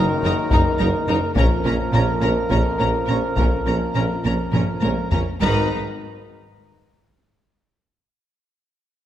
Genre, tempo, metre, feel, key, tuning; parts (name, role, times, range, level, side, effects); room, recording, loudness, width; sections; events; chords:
cinematic, epic orchestral film score; 207 BPM (eighths); 7/8; straight; A4 = 438 Hz
rich symphonic violin section; melody; 0.0-5.8 s; A#5; -30 LUFS; left 3 dB
rich symphonic violin section; second line; 0.0-5.7 s; A#4 to B4; -31 LUFS; left 2 dB
rich symphonic viola section; accompaniment; 0.0-5.8 s; C#4 to D#4; -29 LUFS; right 1 dB
bright trombone section; sustained chords; 0.0-5.7 s; E#2 to E#3; -29 LUFS; right 1 dB
dark French horn section; sustained chords; 0.0-5.7 s; A#3 to D#4; -30 LUFS; left 5 dB
warm trumpet; stabs; 0.0-5.7 s; A#4; -26 LUFS; right 1 dB
rich symphonic cello section; bass; 0.0-5.7 s; F#2 to A#2; -26 LUFS; right 2 dB
rich symphonic double bass section; bass; 0.0-5.7 s; F#1 to A#1; -26 LUFS; right 1 dB
warm tuba; bass; 0.0-5.7 s; F#1 to A#1; -27 LUFS; right 2 dB
taiko ensemble; drums; 0.5-6.6 s; -22 LUFS; left 1 dB
moderate scoring stage reverb, RT60 1.7 s; -17 LUFS; side -11 dB against mid
0.0-5.4 A section; 5.4-7.5 B section
drum fill 4.5-5.4
0.0 D#m/F#; 1.4 A#m; 5.4 G#madd9